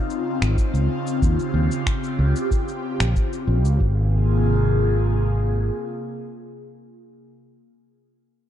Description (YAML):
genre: sunset chillout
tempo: 93 BPM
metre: 4/4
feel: straight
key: Ab major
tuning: A4 = 439 Hz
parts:
  - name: airy breathy pad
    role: sustained chords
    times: 0.0-7.1 s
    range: C3 to Ab4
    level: -25 LUFS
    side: equal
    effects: chorus, phaser
  - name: electronic cabasa and finger snaps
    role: drums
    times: 0.1-3.8 s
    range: none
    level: -33 LUFS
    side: left 1 dB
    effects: overdrive
  - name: fretless electric bass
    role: bass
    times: 0.4-5.7 s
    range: Ab1 to Eb2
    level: -19 LUFS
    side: equal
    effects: none
  - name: electronic kick drum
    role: drums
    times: 0.6-3.9 s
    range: none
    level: -22 LUFS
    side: equal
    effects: none
room: moderate lush hall reverb, RT60 2.0 s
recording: dark, warm production, nothing above 10.9 kHz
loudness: -19 LUFS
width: side -10 dB against mid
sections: 0.0-3.8 A section; 3.8-6.4 B section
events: none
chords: 0.0 Dbmaj9; 1.2 Eb13 (rootless); 3.8 Ab69